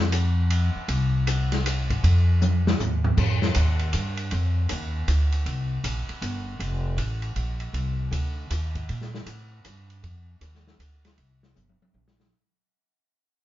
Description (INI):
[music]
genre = modal jazz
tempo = 158 BPM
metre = 3/4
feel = swing 65% on 8ths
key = F mixolydian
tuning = A4 = 439 Hz
[part]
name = upright bass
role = bass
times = 0.0-12.3 s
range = F1 to Bb2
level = -23 LUFS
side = equal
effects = none
[part]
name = open jazz drum kit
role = drums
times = 0.1-12.3 s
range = crash cymbal, hi-hat, kick drum, ride cymbal, snare drum, toms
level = -29 LUFS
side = equal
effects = none
[sound]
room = moderate studio reverb, RT60 0.7 s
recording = heard from further back in the room, nothing above 7.4 kHz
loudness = -22 LUFS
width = side -14 dB against mid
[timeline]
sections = 0.0-3.2 A section; 3.2-12.3 B section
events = drum fill 2.4-3.2, 11.6-12.3; fade-out 3.2-12.3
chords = none